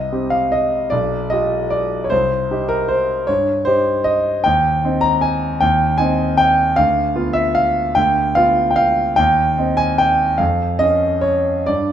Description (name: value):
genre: classical, piano waltz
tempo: 131-162 BPM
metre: 3/4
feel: rubato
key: C minor from 4.4 s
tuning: A4 = 440 Hz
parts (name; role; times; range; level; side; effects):
- warm concert grand piano; solo; 0.0-11.9 s; B1 to Bb5; -14 LUFS; equal; none
room: moderate recital hall reverb, RT60 1.3 s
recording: minimal, uncompressed stereo recording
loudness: -14 LUFS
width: side -10 dB against mid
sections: 0.0-11.9 A section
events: none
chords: 0.0 Cm; 0.9 G7/B; 2.1 Cm; 4.4 Cm/Eb; 6.8 Bdim/D; 9.2 Cm/Eb; 10.4 Db/F